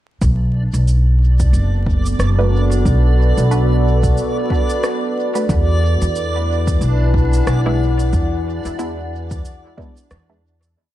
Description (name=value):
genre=ambient dub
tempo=91 BPM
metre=4/4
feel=swing 58% on 16ths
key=B dorian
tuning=A4 = 439 Hz
part: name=deep dark ambient pad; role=sustained chords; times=1.6-10.8 s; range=B3 to G#5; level=-22 LUFS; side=equal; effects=chorus, built-in reverb
part: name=upright bass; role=bass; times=0.2-10.7 s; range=F#1 to E2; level=-15 LUFS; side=equal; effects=none
part: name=electronic cabasa and rim click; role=drums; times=0.2-10.7 s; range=none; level=-29 LUFS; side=equal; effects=small room ambience, dub echo
part: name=electronic kick drum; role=drums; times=0.2-9.9 s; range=none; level=-20 LUFS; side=equal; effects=overdrive, small room ambience
part: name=backwards swelling texture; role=texture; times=0.6-10.8 s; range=D4 to D5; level=-28 LUFS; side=right 1 dB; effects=built-in reverb
part: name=filtered dub chord stab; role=stabs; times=2.4-10.4 s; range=G#3 to B4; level=-26 LUFS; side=right 2 dB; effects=phaser, dub echo
room=little or no reverb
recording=vinyl crackle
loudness=-14 LUFS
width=side -14 dB against mid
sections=0.2-10.8 groove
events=fade-out 7.2-10.8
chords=0.2 Bm7; 5.5 E7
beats=| 0.22 0.88 1.54 2.19 | 2.85 3.51 4.17 4.83 | 5.49 6.15 6.81 7.47 | 8.13 8.79 9.45 10.11